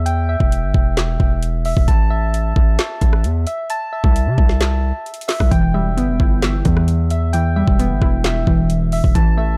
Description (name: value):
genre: hip hop, trap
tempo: 132 BPM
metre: 4/4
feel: half-time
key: E minor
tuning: A4 = 440 Hz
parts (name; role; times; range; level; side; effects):
- soft electric-piano-like synth keys; arpeggios; 0.0-9.6 s; E5 to A5; -28 LUFS; equal; chorus, delay
- distorted 808-style bass; bass; 0.0-9.6 s; E1 to C3; -21 LUFS; equal; distortion
- trap drum kit; drums; 0.1-9.3 s; handclaps, hi-hat, kick drum, rim click, snare drum; -19 LUFS; equal; none
- warbly dusty pluck; accompaniment; 5.5-9.6 s; E3 to E5; -22 LUFS; equal; chorus
room: digital ambience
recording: dark, warm production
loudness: -17 LUFS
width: mono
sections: 0.0-9.6 A section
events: break 0.0-5.5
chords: 0.0 Em; 1.9 A5; 3.7 C6; 5.5 Em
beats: | 0.06 0.52 0.97 1.43 | 1.88 2.33 2.79 3.24 | 3.70 4.15 4.61 5.06 | 5.52 5.97 6.43 6.88 | 7.33 7.79 8.24 8.70 | 9.15